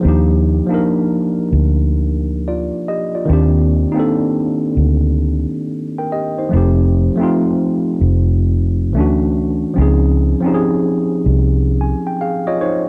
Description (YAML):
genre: lo-fi hip hop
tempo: 74 BPM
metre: 4/4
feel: swing 64% on 16ths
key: C dorian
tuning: A4 = 440 Hz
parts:
  - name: mellow tine electric piano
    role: accompaniment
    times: 0.0-12.9 s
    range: Eb3 to Ab5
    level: -18 LUFS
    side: equal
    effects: cassette tape, low-pass filter
  - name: vintage muted fingered electric bass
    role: bass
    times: 0.0-11.9 s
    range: F1 to Eb2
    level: -16 LUFS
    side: equal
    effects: none
room: little or no reverb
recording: dry, gritty hardware recording, transformer saturation, cassette tape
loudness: -16 LUFS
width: mono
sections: 0.0-12.9 A section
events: tine electric piano fill 11.4-12.9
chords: 0.0 Ebmaj9; 3.3 Cm9; 6.5 F7; 9.0 Dmaj7; 9.8 Dbmaj7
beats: | 0.04 0.85 1.66 2.47 | 3.28 4.09 4.91 5.72 | 6.53 7.34 8.15 8.96 | 9.77 10.58 11.39 12.20